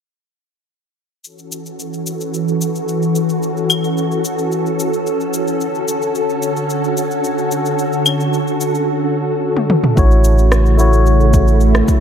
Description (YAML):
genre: sunset chillout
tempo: 110 BPM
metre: 4/4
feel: straight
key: A major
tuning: A4 = 440 Hz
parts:
  - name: soft string machine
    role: sustained chords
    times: 1.5-12.0 s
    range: C#3 to A4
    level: -17 LUFS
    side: equal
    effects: phaser, ensemble chorus
  - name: deep house drum kit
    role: drums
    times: 1.2-12.0 s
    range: cabasa, claves, rim click, toms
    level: -20 LUFS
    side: left 1 dB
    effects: none
  - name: barky tine electric piano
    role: accompaniment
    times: 10.0-12.0 s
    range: A3 to C#5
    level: -17 LUFS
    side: moving between left 4 dB and right 2 dB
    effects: auto-pan, low-pass filter, tape echo
  - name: warm sub bass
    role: bass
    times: 10.0-11.8 s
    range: A1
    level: -12 LUFS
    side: equal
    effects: none
  - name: electronic kick drum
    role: drums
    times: 10.0-12.0 s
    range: none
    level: -13 LUFS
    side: equal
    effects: none
room: moderate lush hall reverb, RT60 2.4 s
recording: dark, warm production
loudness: -13 LUFS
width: side -8 dB against mid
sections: 1.2-10.0 A section; 10.0-12.0 B section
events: drum fill 9.6-10.0; filter sweep on tine electric piano 10.0-12.0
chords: 1.2 A6; 5.6 Dmaj7; 10.0 A6